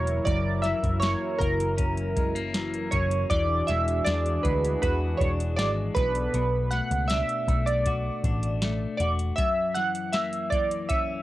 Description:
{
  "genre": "indie pop, bedroom pop",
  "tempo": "79 BPM",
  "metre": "4/4",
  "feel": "straight",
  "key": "B dorian",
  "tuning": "A4 = 440 Hz",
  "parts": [
    { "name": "chorused retro synth keys", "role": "melody", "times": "0.0-11.2 s", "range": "A#4 to F#5", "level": "-27 LUFS", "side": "right 2 dB", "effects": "analog chorus, cassette tape" },
    { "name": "clean electric guitar", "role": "accompaniment", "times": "0.0-11.2 s", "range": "F#2 to F#4", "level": "-33 LUFS", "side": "left 6 dB", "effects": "wide subtle chorus, warbly pitch drift" },
    { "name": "warm analog pad", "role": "sustained chords", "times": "0.0-6.3 s", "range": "E3 to D5", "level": "-34 LUFS", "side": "equal", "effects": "chorus" },
    { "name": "vintage muted picked electric bass", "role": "bass", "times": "0.0-9.3 s", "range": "E1 to E2", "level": "-28 LUFS", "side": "equal", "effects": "none" },
    { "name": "soft vintage rhythm box", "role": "drums", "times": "0.1-11.1 s", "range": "hi-hat, kick drum, snare drum", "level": "-29 LUFS", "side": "equal", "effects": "overdrive" }
  ],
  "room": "digital ambience",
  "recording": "home recording on cassette",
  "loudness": "-23 LUFS",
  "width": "side -16 dB against mid",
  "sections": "0.0-11.2 A section",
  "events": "none",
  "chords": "0.0 F#7; 3.3 E9; 6.0 Bm7; 9.4 F#7"
}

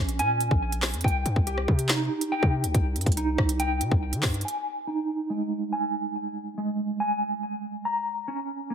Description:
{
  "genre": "hip hop, drill",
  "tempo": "141 BPM",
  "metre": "4/4",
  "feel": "half-time",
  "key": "unclear",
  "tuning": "A4 = 441 Hz",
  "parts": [
    { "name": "mellow electric guitar", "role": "arpeggios", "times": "0.0-8.7 s", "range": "Ab3 to Bb5", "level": "-28 LUFS", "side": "right 1 dB", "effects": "tremolo, low-pass filter, ping-pong delay" },
    { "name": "hard-hitting 808-style bass", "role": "bass", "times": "0.0-4.4 s", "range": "Bb1 to Eb3", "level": "-28 LUFS", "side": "equal", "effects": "none" },
    { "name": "drill drum kit", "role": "drums", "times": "0.1-4.5 s", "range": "handclaps, hi-hat, kick drum, rim click, snare drum", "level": "-25 LUFS", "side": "equal", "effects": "none" }
  ],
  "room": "light reverb",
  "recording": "none",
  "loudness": "-24 LUFS",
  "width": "side -8 dB against mid",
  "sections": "0.0-4.4 A section; 4.4-8.7 B section",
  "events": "none",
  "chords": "0.0 Bbm7; 1.0 Cm; 4.4 Ab5; 7.9 Bbm"
}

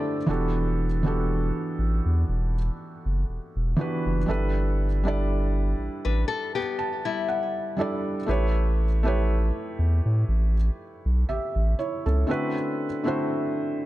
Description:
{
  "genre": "contemporary R&B",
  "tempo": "60 BPM",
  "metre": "4/4",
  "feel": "swing 54% on 16ths",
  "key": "E minor",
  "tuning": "A4 = 440 Hz",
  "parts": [
    { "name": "felt-muted upright piano", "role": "accompaniment", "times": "0.0-13.9 s", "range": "D3 to A5", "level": "-28 LUFS", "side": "right 1 dB", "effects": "none" },
    { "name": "nylon-string guitar", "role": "arpeggios", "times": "0.0-8.2 s", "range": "G3 to B4", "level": "-29 LUFS", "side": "left 6 dB", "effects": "digital delay" },
    { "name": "saturated sub bass", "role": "bass", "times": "0.3-12.2 s", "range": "E1 to A2", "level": "-23 LUFS", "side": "equal", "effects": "none" }
  ],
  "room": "light reverb, small room ambience",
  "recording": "dark, warm production",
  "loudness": "-23 LUFS",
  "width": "side -16 dB against mid",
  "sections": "0.0-13.9 A section",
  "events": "felt piano fill 6.3-8.3",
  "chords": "0.3 Em11; 4.3 G69; 8.3 A9; 12.3 D13"
}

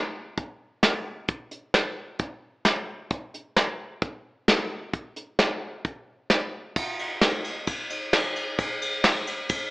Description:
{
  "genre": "country",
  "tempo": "132 BPM",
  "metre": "4/4",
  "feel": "straight",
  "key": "none",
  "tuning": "none",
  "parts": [
    { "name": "soft brush drum kit", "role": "drums", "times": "0.4-9.6 s", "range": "crash cymbal, hi-hat, kick drum, ride cymbal, snare drum", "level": "-23 LUFS", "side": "equal", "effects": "none" }
  ],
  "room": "moderate plate reverb, RT60 1.4 s",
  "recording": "AM radio sound",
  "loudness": "-24 LUFS",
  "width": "side -22 dB against mid",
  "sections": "0.0-6.8 A section; 6.8-9.7 B section",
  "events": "none",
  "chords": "none"
}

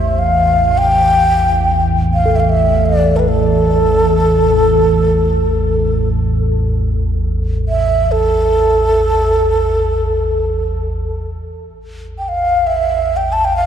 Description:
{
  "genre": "world meditative, free-time meditation music",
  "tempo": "free time",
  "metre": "none",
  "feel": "none",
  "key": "unclear",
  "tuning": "A4 = 440 Hz",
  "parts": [
    { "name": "breathy mellow xiao", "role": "melody", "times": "0.0-13.7 s", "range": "A4 to A5", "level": "-14 LUFS", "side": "equal", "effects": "tape echo" },
    { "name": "deep rumbling drone", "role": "drone", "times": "0.0-13.7 s", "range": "A1 to E2", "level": "-16 LUFS", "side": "equal", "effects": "built-in reverb" },
    { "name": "bronze singing bowl", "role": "texture", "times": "0.0-10.0 s", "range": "G4 to A4", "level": "-27 LUFS", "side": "left 1 dB", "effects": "none" }
  ],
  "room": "moderate huge ambient reverb, RT60 5.0 s",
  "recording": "dark, warm production",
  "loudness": "-12 LUFS",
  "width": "side -9 dB against mid",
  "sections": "0.0-11.1 A section; 11.1-13.7 A section",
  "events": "none",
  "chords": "none"
}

